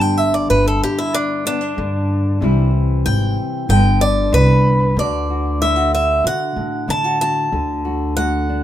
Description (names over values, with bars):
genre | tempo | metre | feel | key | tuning
acoustic folk duo or small band | 94 BPM | 4/4 | straight | unclear | A4 = 440 Hz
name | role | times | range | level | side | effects
picked swing-style acoustic guitar | melody | 0.0-8.6 s | D4 to A5 | -18 LUFS | right 1 dB | none
nylon-string guitar | accompaniment | 0.0-8.6 s | G2 to G4 | -21 LUFS | left 2 dB | none
upright bass | bass | 0.0-8.6 s | G1 to D3 | -18 LUFS | equal | none
room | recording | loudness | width
light reverb | minimal, uncompressed stereo recording | -15 LUFS | side -12 dB against mid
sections
0.0-5.0 A section; 5.0-8.6 B section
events
steel-string acoustic guitar solo 0.0-5.0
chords
0.0 G; 2.4 C; 3.7 G; 5.0 D